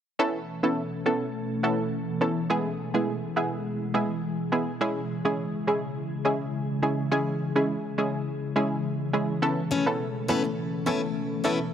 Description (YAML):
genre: dancehall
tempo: 104 BPM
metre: 4/4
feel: straight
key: unclear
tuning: A4 = 442 Hz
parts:
  - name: punchy chord stab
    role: accompaniment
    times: 0.2-11.6 s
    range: G#3 to A4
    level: -27 LUFS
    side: right 1 dB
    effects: chorus
  - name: glassy FM pad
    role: sustained chords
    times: 0.2-11.7 s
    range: B2 to A4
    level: -30 LUFS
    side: left 1 dB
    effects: ensemble chorus, built-in reverb
  - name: picked plugged-in steel-string acoustic guitar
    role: arpeggios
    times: 9.7-11.6 s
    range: A3 to B4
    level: -29 LUFS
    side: left 4 dB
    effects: none
room: light reverb, small room ambience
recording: none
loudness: -25 LUFS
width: side -9 dB against mid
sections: 0.2-11.7 A section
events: none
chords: 0.2 Aadd9; 2.5 E; 4.8 C#m; 9.4 Aadd9